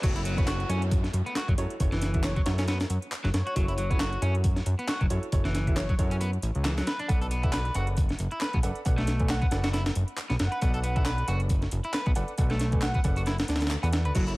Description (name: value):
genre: breakbeat, breaks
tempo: 136 BPM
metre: 4/4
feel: swing 56% on 16ths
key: F# minor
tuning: A4 = 440 Hz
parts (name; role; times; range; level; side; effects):
- electric guitar at the edge of break-up; riff; 0.0-14.3 s; E3 to B4; -34 LUFS; equal; overdrive, tape echo
- clear grand piano; stabs; 0.0-14.4 s; E4 to G#5; -38 LUFS; right 2 dB; vintage 12-bit sampler grit, tape echo
- fat analog bass; bass; 0.0-14.4 s; F#1 to F#2; -28 LUFS; equal; none
- breakbeat sampler-style drum kit; drums; 0.0-14.4 s; crash cymbal, hi-hat, kick drum, snare drum; -28 LUFS; equal; high-pass filter on snare, high-pass filter on hats, high-pass filter on kick, high-pass filter on cymbals
- garage drum kit; drums; 0.0-14.3 s; handclaps, hi-hat; -39 LUFS; equal; high-pass filter on hats, high-pass filter on snare
- noise sweep and downlifter; sound effects; 0.0-3.6 s; none; -41 LUFS; left 1 dB; none
- airy dreamy lead; melody; 2.2-6.0, 9.3-13.0 s; C#5 to F#5; -39 LUFS; equal; chorus, old record sound, tape echo
room: digital ambience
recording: vinyl crackle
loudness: -24 LUFS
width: side -21 dB against mid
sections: 0.0-14.1 A section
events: drop 0.0-14.1; kick drops out 13.3-14.1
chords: 0.0 F#m7; 6.9 Bm7